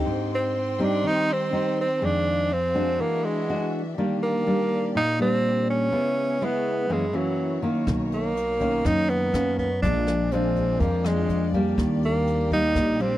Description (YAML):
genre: bossa nova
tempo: 123 BPM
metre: 4/4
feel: straight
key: unclear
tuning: A4 = 440 Hz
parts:
  - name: nylon-string guitar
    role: accompaniment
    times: 0.0-13.2 s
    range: F2 to G4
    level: -25 LUFS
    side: left 1 dB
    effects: none
  - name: warm studio string section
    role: sustained chords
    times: 0.0-13.2 s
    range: Bb3 to C6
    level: -36 LUFS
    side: left 2 dB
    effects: none
  - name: upright bass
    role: bass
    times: 0.0, 7.9-13.2 s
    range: Bb1 to F#2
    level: -28 LUFS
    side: equal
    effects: none
  - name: breathy tenor saxophone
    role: melody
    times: 0.3-13.2 s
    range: F#3 to D#4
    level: -24 LUFS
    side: right 1 dB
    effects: none
  - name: jazz brush drum kit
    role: drums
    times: 7.9-13.1 s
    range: hi-hat, kick drum, rim click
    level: -33 LUFS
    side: equal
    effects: none
room: little or no reverb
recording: dry, close 1970s-style studio recording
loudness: -21 LUFS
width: side -14 dB against mid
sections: 0.1-13.2 A section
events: none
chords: 0.1 Abmaj7; 2.0 Fm7; 3.0 E9; 4.0 Ebmaj7; 5.9 C#m7; 6.9 F#7; 7.9 Bmaj9; 9.8 Bb7; 11.8 Ebmaj7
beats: | 0.06 0.55 1.04 1.53 | 2.02 2.50 2.99 3.48 | 3.97 4.46 4.95 5.43 | 5.92 6.41 6.90 7.39 | 7.88 8.36 8.85 9.34 | 9.83 10.32 10.80 11.29 | 11.78 12.27 12.76